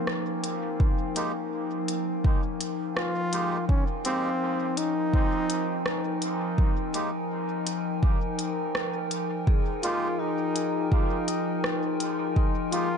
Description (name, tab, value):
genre	ambient dub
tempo	83 BPM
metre	4/4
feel	swing 56% on 16ths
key	F minor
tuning	A4 = 440 Hz
part	warm trombone	melody	0.0-13.0 s	Bb3 to F4	-32 LUFS	equal	dub echo
part	warbly tape-like pad	sustained chords	0.0-13.0 s	F3 to Ab5	-30 LUFS	left 2 dB	chorus, built-in reverb
part	organic electronic drum kit	drums	0.1-12.9 s	hi-hat, rim click	-32 LUFS	equal	none
part	electronic kick drum	drums	0.8-12.5 s	none	-23 LUFS	equal	overdrive
part	melodica	stabs	1.2-12.9 s	Ab3 to G4	-37 LUFS	right 3 dB	dub echo
part	vibraphone with medium hard mallets	arpeggios	9.5-13.0 s	Eb4 to C6	-33 LUFS	left 8 dB	dub echo
room	moderate huge ambient reverb, RT60 8.8 s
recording	nothing above 10.8 kHz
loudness	-25 LUFS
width	side -7 dB against mid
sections	0.0-13.0 A section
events	none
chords	0.0 Fm11